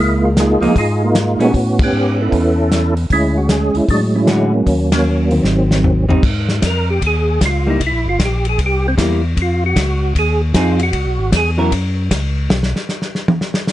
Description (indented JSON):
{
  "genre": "soul jazz organ trio",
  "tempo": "153 BPM",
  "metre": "4/4",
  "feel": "swing 65% on 8ths",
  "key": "unclear",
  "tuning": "A4 = 443 Hz",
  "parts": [
    { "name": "percussive tonewheel organ", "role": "melody", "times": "0.0-11.5 s", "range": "Eb3 to Bb4", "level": "-16 LUFS", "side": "right 1 dB", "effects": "slow rotary speaker, chorus vibrato" },
    { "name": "tonewheel organ", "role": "bass", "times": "0.0-12.7 s", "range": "G1 to Bb2", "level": "-17 LUFS", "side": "equal", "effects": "overdrive, slow rotary speaker" },
    { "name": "warm soul drum kit", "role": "drums", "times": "0.4-13.7 s", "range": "crash cymbal, hi-hat, kick drum, ride cymbal, snare drum, toms", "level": "-19 LUFS", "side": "equal", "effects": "none" },
    { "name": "vintage hollow-body jazz guitar", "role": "accompaniment", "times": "0.6-1.5, 4.3-11.7 s", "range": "D3 to Bb4", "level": "-18 LUFS", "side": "right 1 dB", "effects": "none" }
  ],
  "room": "light reverb, small room ambience",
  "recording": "nothing above 10.8 kHz",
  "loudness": "-13 LUFS",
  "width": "side -14 dB against mid",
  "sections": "0.0-6.2 A section; 6.2-13.7 B section",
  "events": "band accent 1.7, 4.9; drum fill 5.5-6.2; tonewheel organ solo 6.2-13.7; drum solo 12.5-13.7",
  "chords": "0.0 Db69; 1.5 A9; 3.1 Dmaj9#11; 4.7 Ebm7; 5.5 Ab7; 6.2 Ab5; 7.8 C7; 9.4 Fm7; 10.9 Dbm7; 11.7 Gb5; 12.5 N.C."
}